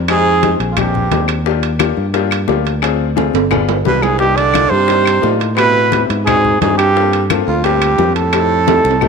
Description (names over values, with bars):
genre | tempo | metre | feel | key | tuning
Afro-Cuban jazz | 175 BPM | 4/4 | straight | unclear | A4 = 440 Hz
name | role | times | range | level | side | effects
fingered electric bass | bass | 0.0-9.1 s | G1 to A2 | -18 LUFS | equal | none
mellow trumpet | melody | 0.1-1.3, 3.9-9.1 s | F4 to D5 | -15 LUFS | right 2 dB | none
bright baritone saxophone | second line | 0.1-1.3, 3.9-9.1 s | F2 to D3 | -19 LUFS | right 10 dB | none
clear grand piano | accompaniment | 0.1-9.1 s | Ab3 to A4 | -19 LUFS | left 12 dB | none
bongos | percussion | 0.1-9.1 s | none | -25 LUFS | left 14 dB | none
claves | percussion | 0.1-9.1 s | none | -25 LUFS | left 15 dB | none
congas | percussion | 0.1-9.1 s | none | -24 LUFS | left 9 dB | none
timbales | percussion | 0.1-9.0 s | none | -21 LUFS | right 13 dB | none
room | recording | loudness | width
moderate echo chamber reverb, RT60 1.9 s, small room ambience | 1960s-style stereo with parts hard left and right | -11 LUFS | side -5 dB against mid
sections
0.0-9.1 A section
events
drum fill 3.2-4.2, 8.7-9.1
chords
0.1 Fm7; 0.8 Bb13; 1.5 Ebmaj9; 2.8 Dm7b5; 3.5 G7b9; 4.2 Cm9; 5.6 Am9; 6.3 Ab7#11; 7.0 Gm11; 8.3 F7